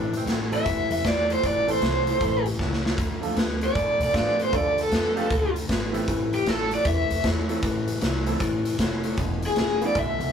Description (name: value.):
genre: electric blues shuffle.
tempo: 155 BPM.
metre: 4/4.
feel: swing 65% on 8ths.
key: A minor.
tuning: A4 = 440 Hz.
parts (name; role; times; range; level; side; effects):
warm upright piano; accompaniment; 0.0-9.9 s; E3 to C5; -31 LUFS; right 5 dB; none.
electric guitar through a small old amp; riff; 0.0-10.3 s; E2 to B3; -30 LUFS; left 4 dB; none.
upright bass; bass; 0.0-10.3 s; E1 to B2; -30 LUFS; equal; none.
raw garage drum kit; drums; 0.1-10.3 s; hi-hat, kick drum, snare drum; -27 LUFS; equal; none.
overdriven electric guitar; melody; 0.5-10.3 s; G4 to E5; -24 LUFS; equal; tremolo.
room: moderate studio reverb, RT60 0.6 s.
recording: rough rehearsal-room recording, tube saturation.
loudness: -22 LUFS.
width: side -7 dB against mid.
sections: 0.0-10.3 A section.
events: drum fill 2.6-3.0.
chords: 0.0 Am; 3.0 Dm; 6.1 Am; 9.2 E.